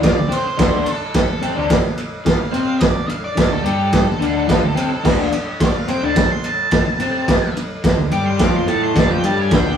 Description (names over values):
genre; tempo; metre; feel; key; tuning
garage rock duo or trio; 108 BPM; 4/4; straight; D minor; A4 = 441 Hz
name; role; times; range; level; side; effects
crunchy overdriven guitar; riff; 0.0-9.8 s; D3 to C5; -20 LUFS; left 2 dB; none
growling picked electric bass; bass; 0.0-9.8 s; D2 to C3; -24 LUFS; equal; overdrive, tube saturation
raw garage drum kit; drums; 0.0-9.6 s; crash cymbal, kick drum, ride cymbal, snare drum; -17 LUFS; equal; none
octave-fuzz lead guitar; melody; 0.1-9.8 s; A4 to D6; -24 LUFS; right 2 dB; distortion
room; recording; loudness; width
moderate studio reverb, RT60 0.5 s; rough rehearsal-room recording, warm saturation, studio reverb; -15 LUFS; side -8 dB against mid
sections
0.0-9.8 A section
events
lead electric guitar solo 0.0-9.8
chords
0.0 Dm